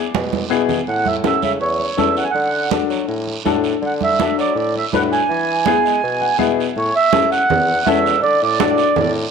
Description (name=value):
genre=latin, cumbia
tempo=163 BPM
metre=4/4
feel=straight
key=A major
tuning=A4 = 442 Hz
part: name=warm upright piano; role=accompaniment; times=0.0-8.9 s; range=B3 to F#5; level=-21 LUFS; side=left 12 dB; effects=none
part: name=mellow bassoon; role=bass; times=0.1-9.3 s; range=E2 to G#3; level=-23 LUFS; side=left 1 dB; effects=none
part: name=congas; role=percussion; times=0.1-9.1 s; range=none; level=-23 LUFS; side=right 10 dB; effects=none
part: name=guiro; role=percussion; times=0.2-9.3 s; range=none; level=-30 LUFS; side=right 11 dB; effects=none
part: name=mellow accordion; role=melody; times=0.9-9.1 s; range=C#5 to G#5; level=-17 LUFS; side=right 4 dB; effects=none
room=moderate echo chamber reverb, RT60 2.2 s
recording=1960s-style stereo with parts hard left and right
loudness=-15 LUFS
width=side -6 dB against mid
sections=0.0-6.8 A section; 6.8-9.3 B section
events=drum fill 0.2-0.9; upright piano fill 6.0-6.8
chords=0.0 E; 0.9 A; 2.4 D; 5.3 E; 6.8 A; 8.2 D